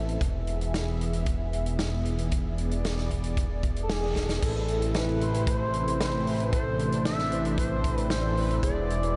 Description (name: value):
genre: synthwave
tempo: 114 BPM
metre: 4/4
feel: straight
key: A harmonic minor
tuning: A4 = 440 Hz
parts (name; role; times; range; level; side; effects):
- phased analog pad; sustained chords; 0.0-9.2 s; B2 to E5; -36 LUFS; equal; phaser, chorus, sidechain pumping
- chorused synth bass; bass; 0.0-9.2 s; E1 to A1; -32 LUFS; equal; sidechain pumping
- natural country drum kit; drums; 0.1-9.1 s; crash cymbal, hi-hat, snare drum; -38 LUFS; equal; none
- kick drum; drums; 0.2-8.7 s; none; -32 LUFS; equal; none
- expressive synth lead; melody; 3.8-9.2 s; G#4 to E5; -33 LUFS; equal; lush chorus, diffuse ambient delay
- mellow synth brass; stabs; 4.4-9.2 s; E3 to C5; -37 LUFS; equal; chorus, phaser, diffuse ambient delay
room: moderate huge ambient reverb, RT60 9.2 s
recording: dreamy mix soaked in reverb, nothing above 10.7 kHz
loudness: -28 LUFS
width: mono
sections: 0.0-4.4 A section; 4.4-9.2 B section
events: band accent 3.9; drum fill 4.2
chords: 0.2 E; 4.4 Am; 8.6 E